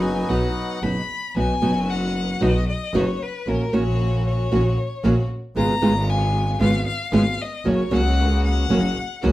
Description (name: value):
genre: tango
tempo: 114 BPM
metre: 4/4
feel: rubato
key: B major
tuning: A4 = 438 Hz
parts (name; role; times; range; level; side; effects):
- bandoneon; melody; 0.0-0.8 s; F#3 to D#4; -27 LUFS; equal; none
- warm violin; second line; 0.0-9.3 s; A#4 to B5; -27 LUFS; left 4 dB; none
- bright symphonic string section; stabs; 0.0-9.3 s; A#3 to F#4; -32 LUFS; equal; none
- clear double bass; bass; 0.0-9.3 s; F#1 to C#2; -22 LUFS; equal; none
- nylon-string guitar; accompaniment; 0.3-9.3 s; B2 to G#4; -21 LUFS; right 1 dB; none
room: moderate studio reverb, RT60 0.6 s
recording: heard from further back in the room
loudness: -19 LUFS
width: side -16 dB against mid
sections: 0.0-1.4 A section; 1.4-9.3 B section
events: violin solo 1.4-9.3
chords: 0.0 B; 3.5 F#/A#; 5.6 C#7/G#; 7.7 F#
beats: 0.29 0.83 | 1.36 1.89 2.42 2.94 | 3.47 4.00 4.52 5.04 | 5.57 6.09 6.61 7.13 | 7.66 8.18 8.70 9.23